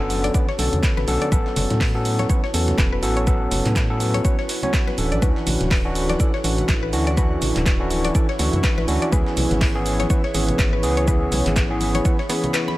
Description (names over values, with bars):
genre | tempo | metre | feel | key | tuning
deep house | 123 BPM | 4/4 | swing 58% on 16ths | unclear | A4 = 439 Hz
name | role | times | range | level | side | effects
dark analog pad | sustained chords | 0.0-12.8 s | D3 to C#6 | -31 LUFS | right 2 dB | chorus, sidechain pumping
overdriven tine electric piano | stabs | 0.0-12.8 s | D3 to C#5 | -24 LUFS | equal | sidechain pumping, digital delay
organ-like FM bass | bass | 0.0-12.0 s | D1 to A2 | -24 LUFS | equal | tube saturation, sidechain pumping
granular cloud pad | texture | 0.2-12.8 s | D3 to B5 | -34 LUFS | equal | built-in reverb, sidechain pumping
dusty soul sampler-style drum kit | drums | 0.1-12.8 s | hi-hat, shaker, snare drum | -34 LUFS | right 1 dB | high-pass filter on perc, high-pass filter on snare, high-pass filter on hats, high-pass filter on room
punchy analog drum machine | drums | 0.1-12.7 s | handclaps, hi-hat | -28 LUFS | right 1 dB | none
congas | percussion | 0.1-12.8 s | none | -31 LUFS | left 1 dB | none
mallet-like synth pluck | arpeggios | 0.2-12.8 s | B3 to B5 | -30 LUFS | left 4 dB | chorus, vintage 12-bit sampler grit, sidechain pumping, digital delay
electronic kick drum | drums | 0.3-12.2 s | none | -20 LUFS | equal | none
room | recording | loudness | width
light reverb | none | -18 LUFS | side -17 dB against mid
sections
0.0-12.8 A section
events
fade-in on ambient pad 0.0-12.8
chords
0.0 Bm9; 1.3 A69; 5.0 Dmaj9; 9.1 C#m7